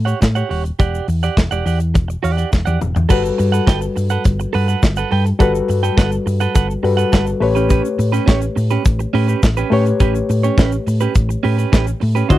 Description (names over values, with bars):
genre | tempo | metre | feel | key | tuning
disco | 104 BPM | 4/4 | straight | unclear | A4 = 440 Hz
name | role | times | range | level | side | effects
hollow-body short-scale fingered electric bass | bass | 0.0-12.4 s | D#1 to A2 | -18 LUFS | equal | none
clean electric guitar | accompaniment | 0.1-12.4 s | C#4 to G5 | -21 LUFS | right 9 dB | none
modern studio drum kit | drums | 0.1-12.4 s | crash cymbal, hi-hat, kick drum, snare drum, toms | -14 LUFS | equal | none
tube shaker | percussion | 0.1-12.4 s | none | -38 LUFS | left 18 dB | none
barky reed electric piano | accompaniment | 3.1-12.4 s | D3 to C#5 | -20 LUFS | left 4 dB | overdrive
room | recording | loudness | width
little or no reverb | dry, close 1970s-style studio recording | -14 LUFS | side -15 dB against mid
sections
0.0-3.1 A section; 3.1-12.4 B section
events
drum fill 2.5-3.1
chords
0.0 A6; 0.8 Em9; 3.1 Gmaj9; 7.4 A9